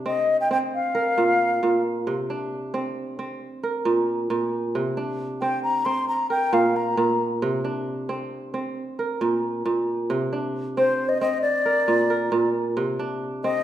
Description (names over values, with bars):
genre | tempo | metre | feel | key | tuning
west african traditional, West African string and xylophone music | 90 BPM (dotted quarters) | 12/8 | straight | unclear | A4 = 442 Hz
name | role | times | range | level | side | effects
kora | arpeggios | 0.0-13.6 s | Bb2 to Bb4 | -24 LUFS | right 2 dB | none
wooden flute | melody | 0.1-13.6 s | C5 to C6 | -22 LUFS | left 2 dB | none
room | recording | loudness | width
wet recital hall reverb, RT60 1.7 s | minimal, uncompressed stereo recording | -21 LUFS | side -11 dB against mid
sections
0.0-10.1 A section; 10.1-13.6 A section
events
none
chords
0.0 Cmadd9; 0.7 N.C.; 2.1 Csus2; 3.4 N.C.; 4.8 Csus2; 6.1 N.C.; 7.4 Csus2; 8.8 N.C.; 10.1 Cmadd9; 11.4 N.C.; 12.8 Cmadd9